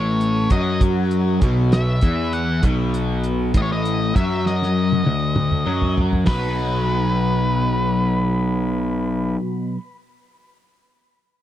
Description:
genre	psychedelic rock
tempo	66 BPM (dotted quarters)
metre	6/8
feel	straight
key	B mixolydian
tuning	A4 = 440 Hz
part	octave-fuzz lead guitar	melody	0.0-9.4 s	B4 to F#5	-26 LUFS	equal	distortion, tape echo
part	overdriven semi-hollow guitar	riff	0.0-9.8 s	A2 to F#4	-22 LUFS	left 1 dB	phaser
part	fuzz picked electric bass	bass	0.0-9.4 s	A1 to F#2	-22 LUFS	equal	overdrive
part	cloth-damped thuddy drum kit	drums	0.2-6.4 s	hi-hat, kick drum, snare drum, toms	-19 LUFS	equal	none
room	small room reverb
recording	dry, close 1970s-style studio recording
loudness	-17 LUFS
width	side -12 dB against mid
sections	0.0-6.3 A section; 6.3-9.9 B section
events	drum fill 4.5-6.3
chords	0.0 B

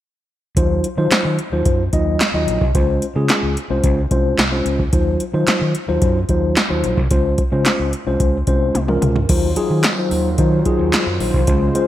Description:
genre	early-eighties boogie funk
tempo	110 BPM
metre	4/4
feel	straight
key	Eb dorian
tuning	A4 = 440 Hz
part	mellow tine electric piano	accompaniment	0.6-11.9 s	Gb3 to Eb5	-19 LUFS	left 2 dB	medium stereo tremolo
part	overdriven fingered electric bass	bass	0.6-11.7 s	Bb1 to Eb3	-20 LUFS	equal	none
part	electro analog drum machine	drums	0.6-11.9 s	crash cymbal, handclaps, hi-hat, kick drum, snare drum, toms	-19 LUFS	equal	overdrive
part	warm analog pad	sustained chords	9.3-11.9 s	Db3 to C5	-23 LUFS	right 1 dB	chorus
room	light reverb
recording	bright 1980s-style digital production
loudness	-15 LUFS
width	side -13 dB against mid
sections	0.6-9.3 A section; 9.3-11.9 B section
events	drum fill 8.7-9.3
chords	0.6 Ebm69; 2.7 Dbmaj7; 4.9 Ebm69; 7.1 Dbmaj7; 9.3 Ebm69

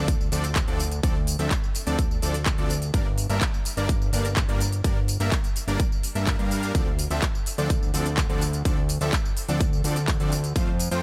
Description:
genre	EDM, festival progressive house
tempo	126 BPM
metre	4/4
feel	straight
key	D minor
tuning	A4 = 440 Hz
part	supersaw chords	riff	0.0-11.0 s	F3 to G5	-33 LUFS	equal	sidechain pumping, delay
part	fat analog bass	bass	0.0-11.0 s	G1 to G2	-29 LUFS	equal	sidechain pumping
part	sub drop	sound effects	0.0-1.0 s	none	barely audible	none	none
part	big-room dance drum kit	drums	0.1-11.0 s	handclaps, hi-hat, tambourine	-33 LUFS	equal	none
part	electronic kick drum	drums	0.1-10.7 s	none	-27 LUFS	equal	none
room	digital ambience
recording	none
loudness	-25 LUFS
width	mono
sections	0.0-11.0 A section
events	impact 0.0-1.0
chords	0.0 Dm7; 2.9 Gm; 6.7 Dm7

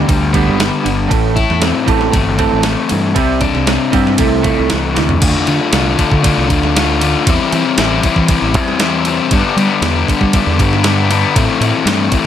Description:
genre	indie rock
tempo	117 BPM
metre	4/4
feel	straight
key	C major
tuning	A4 = 441 Hz
part	electric guitar through a small old amp	riff	0.0-5.2 s	G2 to C4	-18 LUFS	right 13 dB	lush chorus
part	raw garage guitar	riff	0.0-12.3 s	G2 to F4	-14 LUFS	left 6 dB	overdrive
part	fingered electric bass	bass	0.0-12.1 s	G1 to G3	-17 LUFS	right 1 dB	none
part	crisp 8-bit digital drum machine	drums	0.1-12.2 s	crash cymbal, kick drum, ride cymbal, snare drum, toms	-17 LUFS	right 1 dB	none
room	light reverb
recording	none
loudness	-11 LUFS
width	side -10 dB against mid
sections	0.0-5.2 A section; 5.2-12.3 B section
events	drum fill 5.0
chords	0.0 G; 1.1 Am; 3.2 Csus2; 4.2 Am/C; 5.2 Dm7; 7.3 C; 9.3 G; 11.4 Am

